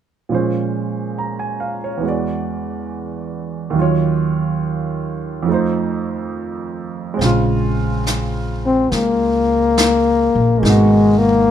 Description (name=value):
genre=jazz ballad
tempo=70 BPM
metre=4/4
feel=swing 67% on 8ths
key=Bb minor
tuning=A4 = 440 Hz
part: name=warm grand piano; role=accompaniment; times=0.3-11.5 s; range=Eb2 to Bb5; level=-20 LUFS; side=right 4 dB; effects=none
part: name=upright bass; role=bass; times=7.2-11.5 s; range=Ab1 to Db2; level=-18 LUFS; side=equal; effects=none
part: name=jazz brush drum kit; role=drums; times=7.2-11.5 s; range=brushed snare drum, hi-hat, snare drum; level=-22 LUFS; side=left 1 dB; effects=none
part: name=warm trombone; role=melody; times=8.7-11.5 s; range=Ab3 to C4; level=-14 LUFS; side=left 4 dB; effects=none
room=light reverb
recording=minimal, uncompressed stereo recording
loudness=-15 LUFS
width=side -9 dB against mid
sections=0.3-7.2 A section; 7.2-11.5 B section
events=none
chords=0.3 Bbm7; 2.0 E9; 3.8 Ebm7; 5.5 F7; 7.2 Bbm9; 10.6 Abm9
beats=| 0.32 1.18 2.04 2.90 | 3.75 4.61 5.47 6.33 | 7.19 8.05 8.91 9.77 | 10.63 11.49